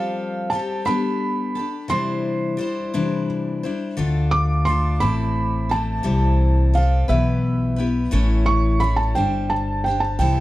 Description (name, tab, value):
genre	acoustic folk duo or small band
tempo	58 BPM (dotted quarters)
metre	6/8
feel	straight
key	unclear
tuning	A4 = 441 Hz
part	felt-muted upright piano	melody	0.0-10.4 s	E5 to D6	-24 LUFS	right 3 dB	none
part	picked steel-string acoustic guitar	accompaniment	0.0-10.4 s	A2 to C#5	-24 LUFS	left 3 dB	none
part	upright bass	bass	4.0-10.4 s	G1 to D2	-20 LUFS	equal	none
room	light reverb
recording	dark, warm production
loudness	-18 LUFS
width	side -16 dB against mid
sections	0.0-10.4 A section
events	none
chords	0.0 Fadd9; 0.9 Gadd9; 1.9 Cadd9; 4.0 Dm; 5.0 Am; 6.1 C6; 7.1 Em/B; 8.1 A; 9.2 Gsus4